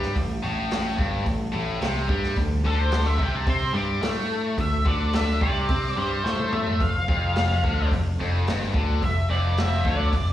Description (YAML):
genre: blues rock power trio and southern rock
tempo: 108 BPM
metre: 4/4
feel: straight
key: unclear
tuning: A4 = 443 Hz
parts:
  - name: tight distorted guitar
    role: riff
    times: 0.0-10.3 s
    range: F2 to C4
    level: -27 LUFS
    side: left 1 dB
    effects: distortion, slapback echo
  - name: modern bright picked electric bass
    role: bass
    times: 0.0-10.3 s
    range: F1 to C3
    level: -25 LUFS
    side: equal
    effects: none
  - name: vintage drum kit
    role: drums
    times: 0.0-10.3 s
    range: hi-hat, kick drum, snare drum, toms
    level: -27 LUFS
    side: equal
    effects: none
  - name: octave-fuzz lead guitar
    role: melody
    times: 2.7-10.3 s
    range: A4 to D6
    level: -28 LUFS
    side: equal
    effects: wah, distortion, slapback echo
room: little or no reverb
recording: live gig heard through the venue's PA, recital hall reverb, small room ambience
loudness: -21 LUFS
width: side -12 dB against mid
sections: 0.0-10.3 A section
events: lead electric guitar solo 0.0-10.3; drum fill 6.3-6.8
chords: 0.0 Am; 2.4 D5; 6.8 F5